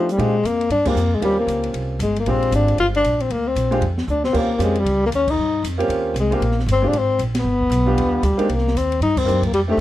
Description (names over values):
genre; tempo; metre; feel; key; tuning
jazz, small-group swing and bop; 232 BPM; 4/4; swing 60% on 8ths; Bb mixolydian; A4 = 440 Hz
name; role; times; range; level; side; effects
breathy tenor saxophone; melody; 0.0-9.8 s; F3 to F4; -19 LUFS; left 2 dB; none
warm upright piano; accompaniment; 0.0-9.8 s; G3 to G4; -23 LUFS; right 2 dB; none
open jazz drum kit; drums; 0.1-9.6 s; crash cymbal, hi-hat, kick drum, ride cymbal, snare drum; -30 LUFS; equal; none
upright bass; bass; 0.2-9.8 s; G1 to Bb2; -22 LUFS; right 1 dB; none
room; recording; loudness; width
light reverb; dark, warm production; -17 LUFS; side -14 dB against mid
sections
0.2-9.8 A section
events
band accent 0.8, 5.2, 7.3, 9.1; drum fill 4.1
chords
0.2 Bb13; 1.2 Eb13; 2.3 Bb13; 4.3 Eb13; 6.4 Bb7sus2; 7.4 G7; 8.5 Cm7